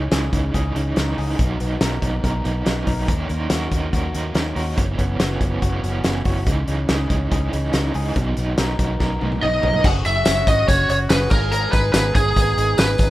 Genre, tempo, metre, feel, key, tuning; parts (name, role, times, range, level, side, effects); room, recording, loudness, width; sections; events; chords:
jangly indie pop; 142 BPM; 4/4; straight; C# dorian; A4 = 440 Hz
raw garage guitar; accompaniment; 0.0-9.8 s; F#2 to A#4; -26 LUFS; right 3 dB; overdrive, tremolo
electric guitar through a small old amp; arpeggios; 0.0-13.1 s; F#2 to A#4; -29 LUFS; left 3 dB; tape echo
vintage muted fingered electric bass; bass; 0.0-13.1 s; F#1 to D#2; -23 LUFS; equal
loose indie drum kit; drums; 0.1-13.1 s; crash cymbal, hi-hat, kick drum, snare drum, toms; -21 LUFS; equal
lead guitar through a small cranked amp; melody; 9.4-13.1 s; G#4 to F#5; -19 LUFS; right 1 dB; overdrive
warm trumpet; second line; 9.8-13.1 s; F#4 to G#4; -30 LUFS; right 1 dB
tambourine; percussion; 10.1-13.1 s; -34 LUFS; left 1 dB
little or no reverb; rough home demo mix; -17 LUFS; side -16 dB against mid
0.0-9.8 A section; 9.8-13.1 B section
drum fill 9.0-9.8
0.0 C#madd9; 1.4 Bmaj7; 3.1 D#m7; 4.8 F#7sus4; 6.5 C#madd9; 8.2 Bmaj7; 9.8 F#sus2; 11.3 G#madd9